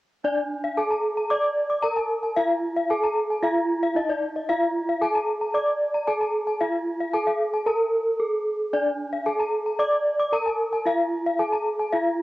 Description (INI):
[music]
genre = gamelan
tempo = 113 BPM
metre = 4/4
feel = straight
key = unclear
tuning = A4 = 440 Hz
[part]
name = gamelan-type bronze metallophone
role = melody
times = 0.2-12.2 s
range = D4 to D5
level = -24 LUFS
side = right 1 dB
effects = none
[part]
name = gamelan-type bronze metallophone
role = arpeggios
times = 0.2-12.1 s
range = D5 to D6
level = -26 LUFS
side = left 3 dB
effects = cassette tape
[sound]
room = moderate spring reverb, RT60 2.0 s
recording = home recording on cassette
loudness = -22 LUFS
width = side -16 dB against mid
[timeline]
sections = 0.2-12.2 A section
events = none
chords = none